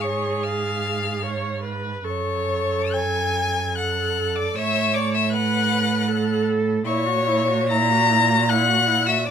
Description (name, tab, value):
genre	classical, slow romantic movement for string quartet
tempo	65-80 BPM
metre	3/4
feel	rubato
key	F# minor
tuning	A4 = 436 Hz
part	rich violin	melody	0.0-9.3 s	C#6 to A#6	-24 LUFS	left 9 dB	none
part	clear violin	second line	0.0-9.3 s	C#5 to A#5	-25 LUFS	left 2 dB	none
part	rich viola	accompaniment	0.0-9.3 s	E4 to C#5	-27 LUFS	right 3 dB	none
part	rich cello	bass	0.0-9.3 s	F#2 to B2	-24 LUFS	right 4 dB	none
room	light reverb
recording	none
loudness	-19 LUFS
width	side -8 dB against mid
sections	0.0-9.3 A section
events	none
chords	0.0 C#7/G#; 2.0 F#m; 4.6 F#m/A; 6.9 F#7/A#